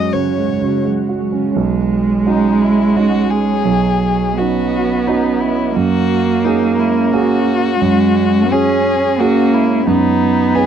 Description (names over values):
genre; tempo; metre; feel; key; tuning
neoclassical piano and strings; 87 BPM; 3/4; rubato; B major; A4 = 439 Hz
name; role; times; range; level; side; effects
muted violin; melody; 0.0-10.7 s; D#4 to D#5; -20 LUFS; left 8 dB; none
muted cello; second line; 0.0-10.7 s; G#2 to C#4; -16 LUFS; right 4 dB; none
dark concert grand piano; accompaniment; 0.0-10.7 s; B1 to D#5; -18 LUFS; right 6 dB; none
glassy FM pad; sustained chords; 0.0-10.7 s; F#3 to D#5; -23 LUFS; left 6 dB; ensemble chorus, built-in reverb
room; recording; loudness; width
light reverb; dry, close 1970s-style studio recording; -12 LUFS; side -8 dB against mid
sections
0.0-1.6 A section; 1.6-10.7 B section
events
none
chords
0.0 F#sus2; 1.6 Badd9; 5.8 F#add9; 9.9 Badd9/F#